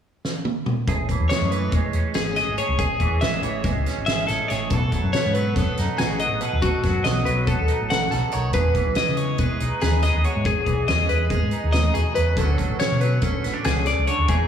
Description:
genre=math rock and midwest emo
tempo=282 BPM (eighths)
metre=9/8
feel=straight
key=unclear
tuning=A4 = 440 Hz
part: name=loose indie drum kit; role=drums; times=0.2-14.4 s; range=hi-hat, kick drum, snare drum, toms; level=-25 LUFS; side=equal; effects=none
part: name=clean electric guitar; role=accompaniment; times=0.9-14.5 s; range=E2 to B4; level=-28 LUFS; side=right 6 dB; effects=analog chorus, slapback echo
part: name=fingered electric bass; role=bass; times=0.9-14.5 s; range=G#1 to C#3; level=-24 LUFS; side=equal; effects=none
part: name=twelve-string electric guitar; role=arpeggios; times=1.3-14.5 s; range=F#4 to F#5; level=-24 LUFS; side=left 2 dB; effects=phaser, analog delay, slapback echo
room=moderate lush hall reverb, RT60 1.8 s, studio reverb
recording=big arena sound, small room ambience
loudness=-19 LUFS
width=side -8 dB against mid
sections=0.9-14.5 A section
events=drum fill 0.2-0.9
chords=0.0 N.C.; 0.9 Amaj7; 4.7 B7; 8.5 Emaj7; 12.4 Dmaj7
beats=0.02 0.24 0.45 0.66 | 0.88 1.09 1.30 1.51 1.73 1.94 2.15 2.37 2.58 | 2.79 3.01 3.22 3.43 3.65 3.86 4.07 4.29 4.50 | 4.71 4.92 5.14 5.35 5.56 5.78 5.99 6.20 6.41 | 6.63 6.84 7.05 7.26 7.48 7.69 7.90 8.12 8.33 | 8.54 8.75 8.97 9.18 9.39 9.61 9.82 10.03 10.24 | 10.46 10.67 10.88 11.10 11.31 11.52 11.73 11.95 12.16 | 12.37 12.59 12.80 13.01 13.22 13.44 13.65 13.86 14.08 | 14.29

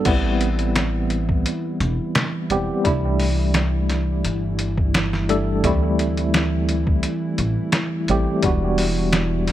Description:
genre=trip hop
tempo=86 BPM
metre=4/4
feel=straight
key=unclear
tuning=A4 = 440 Hz
part: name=tine electric piano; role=accompaniment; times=0.0-9.5 s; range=G3 to A4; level=-23 LUFS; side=equal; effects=medium stereo tremolo, vintage 12-bit sampler grit, tape echo
part: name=dark analog pad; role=sustained chords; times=0.2-9.5 s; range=E3 to E4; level=-27 LUFS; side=right 2 dB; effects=chorus, vintage 12-bit sampler grit
part: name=upright bass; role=bass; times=0.1-9.5 s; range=E1 to D2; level=-23 LUFS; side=equal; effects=none
part: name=trip hop sampler-style drum kit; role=drums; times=0.1-9.5 s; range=crash cymbal, hi-hat, kick drum, snare drum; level=-22 LUFS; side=equal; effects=none
room=light reverb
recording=none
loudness=-18 LUFS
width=side -13 dB against mid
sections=0.1-9.5 A section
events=none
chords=0.1 Am7; 2.9 C6; 5.6 D7sus4; 8.4 Em7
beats=| 0.06 0.76 1.46 2.15 | 2.85 3.55 4.25 4.94 | 5.64 6.34 7.04 7.74 | 8.43 9.13

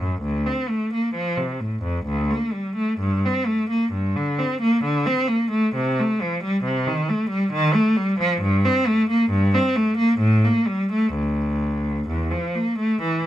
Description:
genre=classical, baroque-style suite movement for unaccompanied cello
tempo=66 BPM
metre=3/4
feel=uneven beats, rubato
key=unclear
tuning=A4 = 437 Hz
part: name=clear cello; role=solo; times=0.0-13.3 s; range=D2 to C4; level=-19 LUFS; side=equal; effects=none
room=light reverb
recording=close, detailed microphones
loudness=-19 LUFS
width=side -12 dB against mid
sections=0.0-13.3 A section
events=none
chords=none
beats=| 0.24 1.16 2.08 | 3.03 3.95 4.85 | 5.74 6.62 7.50 | 8.40 9.30 10.21 | 11.14 12.09 13.03

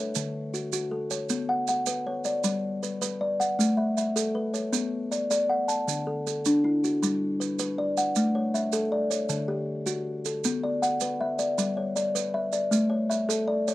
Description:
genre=southern african traditional, mbira-style interlocking cycle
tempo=105 BPM (dotted quarters)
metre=12/8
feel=straight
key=A mixolydian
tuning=A4 = 440 Hz
part: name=kalimba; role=arpeggios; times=0.0-13.7 s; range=D3 to A5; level=-25 LUFS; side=left 1 dB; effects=none
part: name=maracas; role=percussion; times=0.2-13.7 s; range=none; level=-33 LUFS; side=right 17 dB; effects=none
room=little or no reverb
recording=dry, close 1970s-style studio recording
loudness=-25 LUFS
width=side -16 dB against mid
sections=0.0-8.2 A section; 8.2-13.7 B section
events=none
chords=0.2 D; 1.3 Bm; 2.4 G; 3.6 A; 4.7 Bm; 5.9 D; 7.0 G; 8.2 A; 9.3 D; 10.4 Bm; 11.6 G; 12.7 A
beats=0.15 0.72 | 1.30 1.87 2.44 3.01 | 3.58 4.15 4.73 5.30 | 5.87 6.44 7.01 7.58 | 8.15 8.73 9.30 9.87 | 10.44 11.01 11.58 12.15 | 12.72 13.29

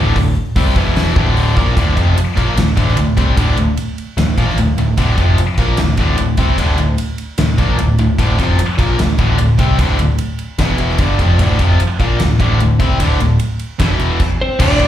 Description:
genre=hard rock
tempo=150 BPM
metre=4/4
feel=straight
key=D minor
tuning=A4 = 440 Hz
part: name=high-gain distorted guitar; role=riff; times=0.0-14.9 s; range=D2 to C4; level=-20 LUFS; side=right 7 dB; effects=distortion, slapback echo
part: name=tight distorted guitar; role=riff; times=0.0-14.9 s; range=D2 to C4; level=-19 LUFS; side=left 8 dB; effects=distortion, slapback echo
part: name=overdriven picked electric bass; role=bass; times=0.0-14.9 s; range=D1 to C2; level=-15 LUFS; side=equal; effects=none
part: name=gated 80s drum kit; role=drums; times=0.2-14.9 s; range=crash cymbal, hi-hat, kick drum, ride cymbal, snare drum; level=-18 LUFS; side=equal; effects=none
part: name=lightly driven lead guitar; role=melody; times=14.4-14.9 s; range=C5 to D5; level=-16 LUFS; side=equal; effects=plate reverb
part: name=octave-fuzz lead guitar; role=second line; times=14.4-14.9 s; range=C4 to D4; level=-21 LUFS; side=right 1 dB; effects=distortion, plate reverb
room=light reverb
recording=live gig heard through the venue's PA, club reverb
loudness=-12 LUFS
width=side -11 dB against mid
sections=0.0-1.8 A section; 1.8-14.6 B section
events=none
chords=0.0 D5; 0.8 E5; 1.2 Dm; 10.6 E5; 11.0 Dm; 13.8 E5; 14.2 N.C.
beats=| 0.17 0.57 0.97 1.37 | 1.77 2.17 2.57 2.97 | 3.37 3.77 4.17 4.58 | 4.98 5.38 5.78 6.18 | 6.58 6.98 7.38 7.78 | 8.18 8.59 8.99 9.39 | 9.79 10.19 10.59 10.99 | 11.39 11.79 12.19 12.59 | 12.99 13.39 13.79 14.20 | 14.60

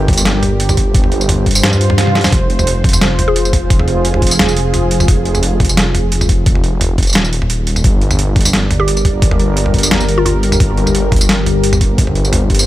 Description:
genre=half-time drum and bass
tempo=174 BPM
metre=4/4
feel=swing 53% on 16ths, half-time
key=unclear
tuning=A4 = 442 Hz
part: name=dark analog pad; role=sustained chords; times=0.0-12.7 s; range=G3 to D5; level=-19 LUFS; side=equal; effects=chorus, vintage 12-bit sampler grit, sidechain pumping
part: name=dark detuned saw bass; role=bass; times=0.0-12.7 s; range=Eb1 to G2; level=-15 LUFS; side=equal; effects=none
part: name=boom bap sampler-style drum kit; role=drums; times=0.1-12.7 s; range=hi-hat, snare drum, tambourine, toms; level=-16 LUFS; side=equal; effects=overdrive
part: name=electronic kick drum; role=drums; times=0.1-12.6 s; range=none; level=-14 LUFS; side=equal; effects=overdrive
part: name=swell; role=sound effects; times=1.8-2.3 s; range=none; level=-24 LUFS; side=right 2 dB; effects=none
part: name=mallet-like synth pluck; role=melody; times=3.3-3.8, 8.8-10.3 s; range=F4 to Ab4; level=-23 LUFS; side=left 1 dB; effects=chorus, dub echo
room=digital ambience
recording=none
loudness=-10 LUFS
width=side -15 dB against mid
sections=0.0-12.7 A section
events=swell 1.8-2.3; drum fill 2.0-2.3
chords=0.0 Gm; 2.3 Fm; 7.8 Gm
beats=0.26 0.60 | 0.95 1.29 1.64 1.98 | 2.33 2.67 3.02 3.36 | 3.71 4.05 4.39 4.74 | 5.08 5.43 5.77 6.12 | 6.46 6.81 7.15 7.50 | 7.84 8.19 8.53 8.88 | 9.22 9.57 9.91 10.26 | 10.60 10.95 11.29 11.64 | 11.98 12.32

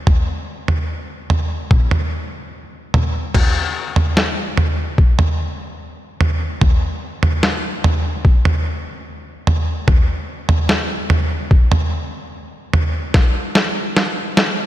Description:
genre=rock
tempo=74 BPM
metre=4/4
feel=straight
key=none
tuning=none
part: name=lo-fi sampler-style drum kit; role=drums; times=0.1-14.6 s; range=crash cymbal, kick drum, snare drum, toms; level=-15 LUFS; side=equal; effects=none
room=light reverb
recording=none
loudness=-15 LUFS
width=side -13 dB against mid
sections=0.0-3.3 A section; 3.3-14.7 B section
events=drum fill 13.1-14.7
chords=none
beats=| 0.07 0.89 1.71 2.53 | 3.35 4.17 4.98 5.80 | 6.62 7.43 8.25 9.06 | 9.88 10.70 11.51 12.33 | 13.14 13.96

